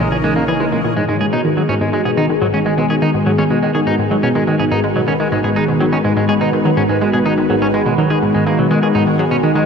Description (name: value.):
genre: ambient, sequencer-driven space music.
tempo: 124 BPM.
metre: 4/4.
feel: straight.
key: G# minor.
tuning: A4 = 440 Hz.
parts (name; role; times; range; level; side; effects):
phased analog pad; sustained chords; 0.0-9.7 s; C#3 to C#5; -16 LUFS; left 1 dB; phaser, chorus.
semi-hollow electric guitar; arpeggios; 0.0-9.6 s; F#3 to G#4; -20 LUFS; right 2 dB; auto-pan, tape echo.
analog pluck; riff; 0.0-9.6 s; G#2 to A#3; -17 LUFS; equal; chorus, tape echo.
analog drone; bass; 0.0-9.7 s; G#1 to A#1; -37 LUFS; equal; none.
bubbling stepped-filter texture; texture; 0.0-9.7 s; G#4 to G#5; -33 LUFS; left 1 dB; none.
room: wet huge ambient reverb, RT60 7.8 s.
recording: none.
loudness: -13 LUFS.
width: side -6 dB against mid.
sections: 1.0-9.7 A section.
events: none.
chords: 0.0 A#dim; 1.0 G#m7.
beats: 0.00 0.48 | 0.97 1.45 1.93 2.42 | 2.90 3.38 3.87 4.35 | 4.84 5.32 5.80 6.29 | 6.77 7.26 7.74 8.22 | 8.71 9.19.